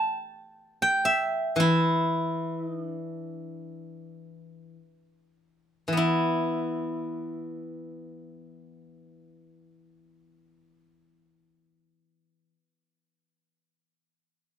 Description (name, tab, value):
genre	chinese traditional, Chinese solo plucked strings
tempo	free time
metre	none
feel	none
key	E yu mode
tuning	A4 = 440 Hz
part	steel-string zither	solo	0.0-12.5 s	E3 to A5	-26 LUFS	equal	none
room	light reverb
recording	minimal, uncompressed stereo recording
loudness	-25 LUFS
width	side -9 dB against mid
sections	0.0-6.0 A section; 6.0-10.8 B section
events	slowing down 1.5-6.0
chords	none